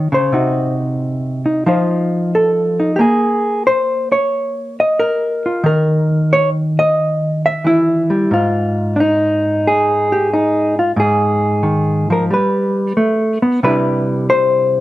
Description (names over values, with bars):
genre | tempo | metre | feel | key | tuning
solo jazz | 90 BPM | 4/4 | swing 69% on 8ths | Ab major | A4 = 440 Hz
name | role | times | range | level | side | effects
hollow-body jazz guitar | solo | 0.0-14.8 s | Ab2 to Fb5 | -13 LUFS | equal | none
room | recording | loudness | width
light reverb | none | -13 LUFS | side -15 dB against mid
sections
0.0-13.6 A section; 13.6-14.8 B section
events
none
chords
0.3 Cdim; 1.7 F7; 3.0 Bbm7; 5.7 Eb5; 8.3 Ab5; 12.3 Gadd9; 13.6 Cmaj9